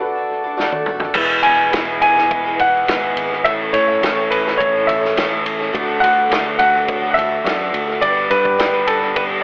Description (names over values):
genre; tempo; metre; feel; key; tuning
folk rock and heartland rock; 105 BPM; 4/4; straight; unclear; A4 = 440 Hz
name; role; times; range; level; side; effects
bright grand piano; melody; 0.0-9.2 s; A4 to G#5; -19 LUFS; equal; tape echo
dark concert grand piano; accompaniment; 0.0-9.4 s; E4 to E5; -31 LUFS; equal; tape echo
picked twelve-string acoustic guitar; accompaniment; 0.0-9.4 s; A2 to B4; -29 LUFS; equal; none
pedal harmonium; sustained chords; 0.0-9.4 s; G#3 to B4; -28 LUFS; equal; none
vintage drum kit; drums; 0.6-9.3 s; crash cymbal, kick drum, ride cymbal, snare drum, toms; -22 LUFS; equal; tape echo
picked electric bass; bass; 1.2-9.4 s; E1 to A2; -33 LUFS; equal; none
room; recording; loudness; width
light reverb; echo-heavy mix, telephone sound; -17 LUFS; mono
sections
0.0-1.2 A section; 1.2-9.4 B section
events
break 0.0-1.2; drum fill 0.6-1.2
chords
0.0 D; 1.2 E; 3.4 A; 5.7 D; 8.0 G